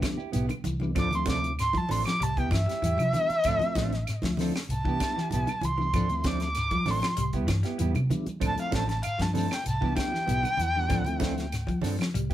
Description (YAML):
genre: afrobeat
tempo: 96 BPM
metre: 4/4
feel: straight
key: D dorian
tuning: A4 = 440 Hz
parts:
  - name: mellow tonewheel organ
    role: accompaniment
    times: 0.0-11.5 s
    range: E3 to E4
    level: -35 LUFS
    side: left 1 dB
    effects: slow rotary speaker
  - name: clean electric guitar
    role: arpeggios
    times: 0.0-12.3 s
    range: C3 to G3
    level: -34 LUFS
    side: left 2 dB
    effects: none
  - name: mellow electric guitar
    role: stabs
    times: 0.0-12.3 s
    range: F3 to A4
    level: -34 LUFS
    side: right 4 dB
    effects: none
  - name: tight funk drum kit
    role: drums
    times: 0.0-12.3 s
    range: hi-hat, kick drum, snare drum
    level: -33 LUFS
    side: equal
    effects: none
  - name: claves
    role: percussion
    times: 0.0-12.2 s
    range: none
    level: -40 LUFS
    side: right 6 dB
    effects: none
  - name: congas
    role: percussion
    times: 0.0-12.0 s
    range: none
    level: -35 LUFS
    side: right 2 dB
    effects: none
  - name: shekere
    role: percussion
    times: 0.0-12.3 s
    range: none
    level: -35 LUFS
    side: left 1 dB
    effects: none
  - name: fingered electric bass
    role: bass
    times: 0.3-12.3 s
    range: A1 to C3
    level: -30 LUFS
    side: equal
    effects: none
  - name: dark erhu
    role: melody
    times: 1.0-11.8 s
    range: E5 to D6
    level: -29 LUFS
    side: equal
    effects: none
room: moderate studio reverb, RT60 0.5 s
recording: band playing live in one room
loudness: -25 LUFS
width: side -13 dB against mid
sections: 0.0-12.3 A section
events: erhu solo 0.0-12.3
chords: 0.0 Cmaj7; 1.0 Dm7; 2.2 Cmaj7; 3.5 Dm7; 4.7 Cmaj7; 5.9 Dm7; 7.2 Cmaj7; 8.4 Dm7; 9.7 Cmaj7; 10.9 Dm7